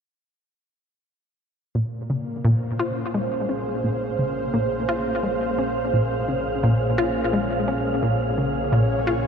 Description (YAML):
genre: ambient, sequencer-driven space music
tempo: 86 BPM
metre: 4/4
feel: straight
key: Bb minor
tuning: A4 = 440 Hz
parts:
  - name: lush unison pad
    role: sustained chords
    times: 1.7-9.3 s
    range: Bb2 to Db5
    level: -25 LUFS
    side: right 1 dB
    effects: chorus, shimmer reverb
  - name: analog pluck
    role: riff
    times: 1.8-9.3 s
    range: Bb2 to F4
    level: -23 LUFS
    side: left 1 dB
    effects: chorus, cassette tape, tape echo
  - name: fat analog bass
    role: bass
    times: 1.8-9.3 s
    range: Bb1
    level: -35 LUFS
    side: equal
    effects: none
  - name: wind-like tuned noise texture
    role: texture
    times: 2.9-9.3 s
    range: F5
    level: -32 LUFS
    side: right 4 dB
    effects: built-in reverb, shimmer reverb
room: wet cathedral reverb, RT60 6.2 s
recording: in a vast, echoing space, lossy compression artefacts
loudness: -21 LUFS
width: side -7 dB against mid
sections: 1.7-9.3 A section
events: fade-in on analog synth bass 1.7-9.3; filter sweep on synth arpeggio sound 1.7-9.3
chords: 1.7 Bbm7